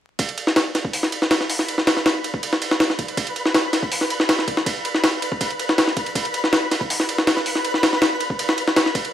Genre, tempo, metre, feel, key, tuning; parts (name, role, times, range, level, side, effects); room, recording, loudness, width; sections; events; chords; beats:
drum and bass, jungle; 161 BPM; 4/4; straight; A4 = 440 Hz
jungle sampler-style drum kit; drums; 0.2-9.1 s; hi-hat, kick drum, ride cymbal, snare drum; -19 LUFS; equal; high-pass filter on cymbals, small room reverb, high-pass filter on kick, high-pass filter on snare, high-pass filter on hats
twinkling granular texture; texture; 0.9-9.1 s; B4 to B5; -27 LUFS; equal; built-in reverb
moderate plate reverb, RT60 1.6 s; vinyl crackle; -18 LUFS; side -10 dB against mid
0.2-9.1 A section
| 0.19 0.57 0.94 1.31 | 1.69 2.06 2.43 2.80 | 3.17 3.55 3.92 4.29 | 4.67 5.04 5.41 5.78 | 6.16 6.53 6.90 7.28 | 7.65 8.02 8.39 8.77